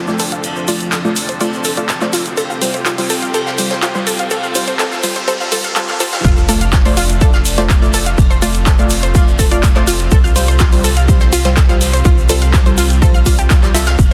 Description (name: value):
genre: progressive house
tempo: 124 BPM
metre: 4/4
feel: straight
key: F major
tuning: A4 = 440 Hz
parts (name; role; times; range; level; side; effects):
- supersaw pad; sustained chords; 0.0-14.1 s; C3 to A5; -27 LUFS; equal; sidechain pumping, low-pass filter
- analog pluck; arpeggios; 0.0-14.1 s; F4 to F6; -23 LUFS; equal; chorus, sidechain pumping, tape echo
- riser, swell and sub drop; sound effects; 2.3-8.2 s; none; -30 LUFS; equal; none
- unison pluck; stabs; 0.1-13.9 s; G3 to E5; -23 LUFS; equal; sidechain pumping, tape echo
- vintage brush drum kit; drums; 0.1-14.1 s; ride cymbal, snare drum; -30 LUFS; equal; none
- egg shaker; percussion; 0.1-14.1 s; none; -28 LUFS; equal; none
- house drum kit; drums; 0.2-14.1 s; handclaps, hi-hat; -23 LUFS; equal; overdrive
- tight sequencer bass; bass; 6.2-14.1 s; F1 to C2; -18 LUFS; equal; sidechain pumping
- electronic kick drum; drums; 6.2-14.1 s; none; -14 LUFS; equal; overdrive
room: light reverb, digital ambience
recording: dense, heavily limited modern master, high-pass filter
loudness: -13 LUFS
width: mono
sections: 0.0-6.2 A section; 6.2-14.1 B section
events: build-up 0.0-6.2; filter sweep on synth arpeggio sound 0.0-6.2; filter sweep on synth pluck 0.0-6.2; filter sweep on supersaw synth 0.0-6.2; swell 5.3-6.2; drop 6.2-14.1; impact 6.2-8.2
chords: 0.0 F6; 2.4 Csus4; 6.2 F6; 10.1 Csus4